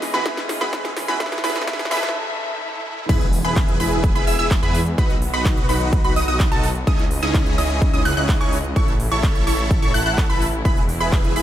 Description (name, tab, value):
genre	EDM, festival progressive house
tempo	127 BPM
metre	4/4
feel	straight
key	E major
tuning	A4 = 443 Hz
part	bright grand piano	accompaniment	0.0-2.1 s	E3 to F#4	-30 LUFS	right 2 dB	sidechain pumping, dub echo
part	rich studio string section	sustained chords	0.0-11.4 s	B2 to E5	-30 LUFS	left 2 dB	vintage 12-bit sampler grit, sidechain pumping
part	big-room dance drum kit	drums	0.0-11.4 s	crash cymbal, handclaps, hi-hat, snare drum	-30 LUFS	equal	overdrive
part	riser and impact	sound effects	0.0-5.0 s	none	-31 LUFS	equal	none
part	wide unison pluck	arpeggios	0.1-11.4 s	A5 to F#6	-26 LUFS	right 1 dB	cassette tape, sidechain pumping, dub echo
part	big supersaw lead	riff	0.1-11.4 s	C#4 to F#5	-25 LUFS	right 1 dB	phaser, sidechain pumping, dub echo
part	electronic kick drum	drums	0.3-11.2 s	none	-19 LUFS	equal	overdrive, high-pass filter on kick
part	detuned saw bass	bass	3.1-11.4 s	E1 to E2	-24 LUFS	equal	tube saturation, sidechain pumping
room	little or no reverb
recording	high-pass filter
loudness	-17 LUFS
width	side -12 dB against mid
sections	0.0-3.1 A section; 3.1-11.4 B section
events	build-up 0.0-3.1; drum fill 0.0-2.1; riser 0.0-3.1; break 2.1-3.1; drop 3.1-11.4; impact 3.1-5.0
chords	0.0 C#madd9; 1.2 A; 3.1 E; 5.0 B; 6.9 C#madd9; 8.8 A; 10.7 E